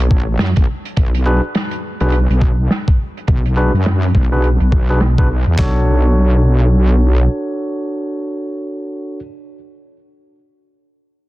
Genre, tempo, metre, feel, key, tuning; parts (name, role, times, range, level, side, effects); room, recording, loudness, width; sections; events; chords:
glitch hop; 104 BPM; 4/4; swing 60% on 16ths; B dorian; A4 = 443 Hz
wobble bass; bass; 0.0-7.3 s; B1 to F#2; -13 LUFS; equal; chorus
boom bap sampler-style drum kit; drums; 0.1-5.7 s; handclaps, kick drum, snare drum; -14 LUFS; equal
open jazz drum kit; drums; 0.4-5.6 s; hi-hat, snare drum; -22 LUFS; right 1 dB; low-pass filter on hats, low-pass filter on snare, low-pass filter on room
overdriven tine electric piano; stabs; 1.3-9.2 s; D4 to C#5; -22 LUFS; right 1 dB; sidechain pumping, low-pass filter, digital delay
small room ambience; dense, heavily limited modern master; -13 LUFS; side -18 dB against mid
0.0-5.6 A section; 5.6-7.9 B section
filter sweep on drum 0.0-5.6; filter sweep on tine electric piano 0.0-5.6
0.0 B5; 1.0 E7/B (rootless); 5.6 Bm7